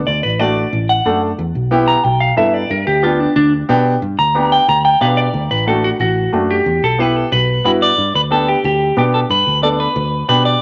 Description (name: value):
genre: latin, cumbia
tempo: 182 BPM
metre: 4/4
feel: straight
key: G major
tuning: A4 = 442 Hz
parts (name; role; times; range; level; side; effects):
- fingered electric bass; bass; 0.0-10.6 s; A1 to B2; -22 LUFS; equal; none
- clean electric guitar; melody; 0.1-10.6 s; D4 to Bb5; -17 LUFS; equal; spring reverb
- warm upright piano; accompaniment; 0.4-10.5 s; A3 to A4; -19 LUFS; equal; none
room: wet studio ambience, RT60 0.5 s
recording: nothing above 7.8 kHz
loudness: -15 LUFS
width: mono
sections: 0.0-5.3 A section; 5.3-10.6 B section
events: clean electric guitar solo 0.0-5.3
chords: 0.1 D; 1.4 Em; 2.7 G; 5.3 D; 6.7 Em; 8.0 G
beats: | 0.07 0.40 0.73 1.06 | 1.39 1.72 2.05 2.38 | 2.71 3.04 3.36 3.69 | 4.02 4.35 4.68 5.01 | 5.34 5.67 6.00 6.33 | 6.66 6.99 7.32 7.65 | 7.98 8.31 8.64 8.97 | 9.30 9.63 9.96 10.29 | 10.62